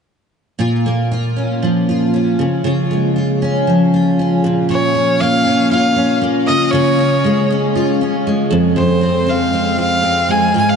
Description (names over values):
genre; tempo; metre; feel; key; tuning
pop; 118 BPM; 4/4; swing 55% on 16ths; unclear; A4 = 440 Hz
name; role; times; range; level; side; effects
picked steel-string acoustic guitar; accompaniment; 0.6-10.8 s; F2 to F4; -14 LUFS; equal; double-tracked left and right
clear violin; melody; 4.7-10.8 s; C5 to Ab5; -16 LUFS; equal; none
room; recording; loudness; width
wet huge ambient reverb, RT60 7.8 s; dreamy mix soaked in reverb, nothing above 10.6 kHz; -13 LUFS; side -6 dB against mid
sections
0.6-4.7 A section; 4.7-10.8 B section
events
none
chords
0.6 Bbm; 2.4 Db; 4.4 N.C.; 4.7 Bbm; 6.5 Db; 8.5 Fm